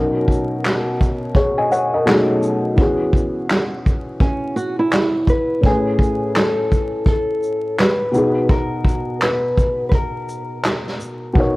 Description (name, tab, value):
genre	lo-fi hip hop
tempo	84 BPM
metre	4/4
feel	swing 61% on 16ths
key	unclear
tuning	A4 = 438 Hz
part	felt-muted upright piano	accompaniment	0.0-11.6 s	A2 to G#5	-20 LUFS	left 1 dB	cassette tape, low-pass filter
part	vintage brush drum kit	drums	0.3-11.6 s	handclaps, hi-hat, kick drum, shaker, snare drum	-17 LUFS	equal	none
part	flamenco guitar	second line	4.2-5.6 s	C#4 to F#4	-21 LUFS	right 2 dB	low-pass filter, tape echo
part	mellow electric guitar	melody	5.3-11.0 s	G#4 to B4	-22 LUFS	left 1 dB	low-pass filter, tape echo
room	light reverb, small room ambience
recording	worn, warbling old tape, cassette tape, vinyl crackle, warbly pitch drift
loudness	-16 LUFS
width	side -21 dB against mid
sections	0.0-11.6 A section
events	none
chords	0.0 Bmaj9; 2.1 B13; 2.8 E69; 5.6 Amaj9; 8.1 G#m9/B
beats	0.64 1.35 2.07 | 2.78 3.50 4.21 4.92 | 5.64 6.35 7.07 7.78 | 8.50 9.21 9.92 10.64 | 11.35